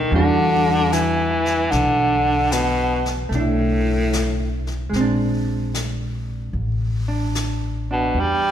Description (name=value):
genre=jazz ballad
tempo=75 BPM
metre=4/4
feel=swing 67% on 8ths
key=unclear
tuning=A4 = 442 Hz
part: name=clear baritone saxophone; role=melody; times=0.0-8.5 s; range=A2 to G3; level=-19 LUFS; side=equal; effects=none
part: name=vintage hollow-body jazz guitar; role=accompaniment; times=0.0-8.5 s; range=E3 to F#4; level=-25 LUFS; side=right 1 dB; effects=none
part: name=upright bass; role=bass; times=0.0-8.5 s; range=A1 to E2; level=-23 LUFS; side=equal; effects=none
part: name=jazz brush drum kit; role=drums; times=0.1-8.5 s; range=brushed snare drum, hi-hat, snare drum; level=-32 LUFS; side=left 3 dB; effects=none
room=moderate concert hall reverb, RT60 1.8 s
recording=recorded in a church or concert hall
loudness=-18 LUFS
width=side -10 dB against mid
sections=0.0-8.5 A section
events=none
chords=0.1 Em9; 3.3 Bm7; 4.9 Bb9; 6.5 Asus4